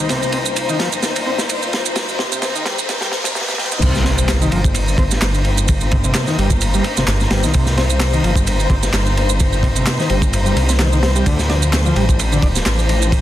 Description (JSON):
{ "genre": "breakbeat, breaks", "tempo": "129 BPM", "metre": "4/4", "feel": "swing 55% on 16ths", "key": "C dorian", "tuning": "A4 = 439 Hz", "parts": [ { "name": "rich symphonic string section", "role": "sustained chords", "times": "0.0-13.2 s", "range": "F3 to C5", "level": "-23 LUFS", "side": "left 4 dB", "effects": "sidechain pumping" }, { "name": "combo organ", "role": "riff", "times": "0.0-12.5 s", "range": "C3 to D4", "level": "-23 LUFS", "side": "equal", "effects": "tube saturation, low-pass filter, ping-pong delay" }, { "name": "detuned saw bass", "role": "bass", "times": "0.0-13.2 s", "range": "D1 to D2", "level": "-18 LUFS", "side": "equal", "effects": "none" }, { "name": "riser and impact", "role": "sound effects", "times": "0.2-5.7 s", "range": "none", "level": "-27 LUFS", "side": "right 1 dB", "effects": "none" }, { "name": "crunchy breakbeat drum kit", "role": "drums", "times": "0.1-13.2 s", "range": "crash cymbal, kick drum, ride cymbal, snare drum", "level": "-19 LUFS", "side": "equal", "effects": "none" }, { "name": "electronic shaker and handclaps", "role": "drums", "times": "0.1-13.2 s", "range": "none", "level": "-23 LUFS", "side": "right 5 dB", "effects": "overdrive, high-pass filter on perc, high-pass filter on snare" } ], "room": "light reverb", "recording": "dense, heavily limited modern master, high-pass filter", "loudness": "-14 LUFS", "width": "side -13 dB against mid", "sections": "0.0-3.8 A section; 3.8-13.2 B section", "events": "build-up 0.0-3.8; filter sweep on transistor combo organ 0.0-3.8; filter sweep on string section 0.0-3.8; drum fill 0.1-3.8; riser 0.2-3.8; drop 3.8-13.2; impact 3.8-5.7", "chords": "0.0 Cm7; 11.3 Dm7" }